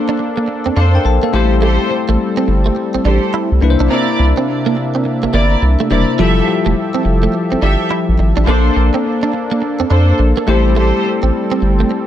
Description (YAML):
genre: R&B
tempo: 105 BPM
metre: 4/4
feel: swing 63% on 16ths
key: unclear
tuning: A4 = 440 Hz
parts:
  - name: bell-like tine electric piano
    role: accompaniment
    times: 0.0-12.1 s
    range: G3 to A5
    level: -19 LUFS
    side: moving between left 10 dB and left 4 dB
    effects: auto-pan
  - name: brassy analog pad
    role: sustained chords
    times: 0.0-12.1 s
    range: C3 to E5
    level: -20 LUFS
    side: equal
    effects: chorus
  - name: direct-recorded clean electric guitar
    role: riff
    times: 0.1-11.9 s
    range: F3 to E4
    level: -20 LUFS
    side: right 6 dB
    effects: ensemble chorus
  - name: round analog bass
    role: bass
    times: 0.7-11.8 s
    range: E1 to F2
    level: -13 LUFS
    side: equal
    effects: none
  - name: muted studio string section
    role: stabs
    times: 0.8-11.0 s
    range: D4 to E5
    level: -21 LUFS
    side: right 2 dB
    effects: digital delay
room: digital ambience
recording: none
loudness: -12 LUFS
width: side -11 dB against mid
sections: 0.0-12.1 A section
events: none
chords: 0.0 Bbmaj9; 1.3 Am7; 3.6 C9; 6.2 Fmaj9; 8.5 Bbmaj9; 10.5 Am7